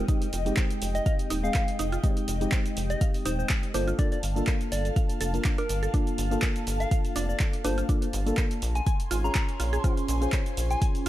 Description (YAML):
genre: deep house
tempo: 123 BPM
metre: 4/4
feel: swing 54% on 16ths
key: unclear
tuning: A4 = 440 Hz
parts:
  - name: airy breathy pad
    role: sustained chords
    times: 0.0-11.1 s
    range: Db4 to C6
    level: -38 LUFS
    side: right 1 dB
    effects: chorus, phaser, sidechain pumping
  - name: mallet-like synth pluck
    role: arpeggios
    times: 0.0-11.1 s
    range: D4 to Ab5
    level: -37 LUFS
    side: right 6 dB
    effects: chorus, sidechain pumping, analog delay
  - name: mellow FM electric piano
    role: stabs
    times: 0.0-11.1 s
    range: Ab3 to Db5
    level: -33 LUFS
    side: left 1 dB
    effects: chorus, sidechain pumping, tape echo
  - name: rubbery square bass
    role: bass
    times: 0.0-11.1 s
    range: Eb1 to Bb1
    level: -28 LUFS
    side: equal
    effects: tube saturation, sidechain pumping
  - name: electronic kick drum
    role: drums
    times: 0.1-10.9 s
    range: none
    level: -26 LUFS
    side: equal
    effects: none
  - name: punchy analog drum machine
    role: drums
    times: 0.1-11.1 s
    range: handclaps, hi-hat, shaker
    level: -34 LUFS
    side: right 1 dB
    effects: overdrive
  - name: soft struck synth lead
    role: melody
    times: 0.9-11.1 s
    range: Bb4 to Bb5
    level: -35 LUFS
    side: left 1 dB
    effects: chorus, analog delay
room: little or no reverb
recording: none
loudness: -24 LUFS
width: side -14 dB against mid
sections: 0.0-11.1 A section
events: none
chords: 0.0 Fm9; 3.7 Gm9; 8.6 Bbm9